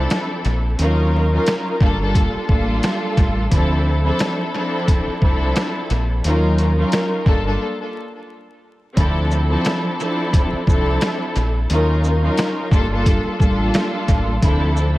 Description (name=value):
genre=hip hop, boom-bap hip-hop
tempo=88 BPM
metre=4/4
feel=swing 56% on 16ths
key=D minor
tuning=A4 = 439 Hz
part: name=dark studio string section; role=accompaniment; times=0.0-15.0 s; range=F3 to Bb4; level=-20 LUFS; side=equal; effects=high-pass filter, low-pass filter, tape echo
part: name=deep dub fingered electric bass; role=bass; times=0.0-15.0 s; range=G1 to Eb2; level=-19 LUFS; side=equal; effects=none
part: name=trip hop sampler-style drum kit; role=drums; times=0.1-14.9 s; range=hi-hat, kick drum, shaker, snare drum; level=-19 LUFS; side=equal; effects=tape echo
room=light reverb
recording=echo-heavy mix, vinyl crackle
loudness=-16 LUFS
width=side -17 dB against mid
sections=0.0-15.0 A section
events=break 7.6-9.0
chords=0.0 Dm9; 0.8 Ebm9; 1.8 Gm9; 3.5 Dm9; 6.2 Ebm9; 7.3 Gm9; 9.0 Dm9; 11.7 Ebm9; 12.7 Gm9; 14.4 Dm9